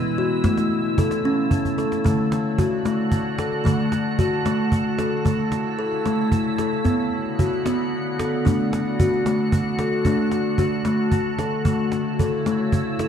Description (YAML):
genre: world meditative, meditative tuned percussion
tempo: 75 BPM (dotted quarters)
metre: 6/8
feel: straight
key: unclear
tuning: A4 = 439 Hz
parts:
  - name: icy glass pad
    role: sustained chords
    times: 0.0-13.1 s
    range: B2 to F#4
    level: -25 LUFS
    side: equal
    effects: chorus, built-in reverb
  - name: kalimba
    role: arpeggios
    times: 0.0-13.1 s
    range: D3 to A4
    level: -22 LUFS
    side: left 1 dB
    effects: none
  - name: cajon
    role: percussion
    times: 0.4-13.1 s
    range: none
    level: -24 LUFS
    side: right 1 dB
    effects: none
room: wet echo chamber reverb, RT60 1.7 s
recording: dark, warm production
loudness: -19 LUFS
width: side -8 dB against mid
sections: 0.0-2.0 A section; 2.0-13.1 B section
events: drum fill 1.6-2.0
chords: 0.5 A; 2.0 D; 5.2 A; 6.9 Bm; 8.5 D; 11.7 A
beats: | 0.45 1.25 | 2.05 2.85 | 3.65 4.45 | 5.25 6.05 | 6.85 7.65 | 8.45 9.26 | 10.06 10.86 | 11.66 12.46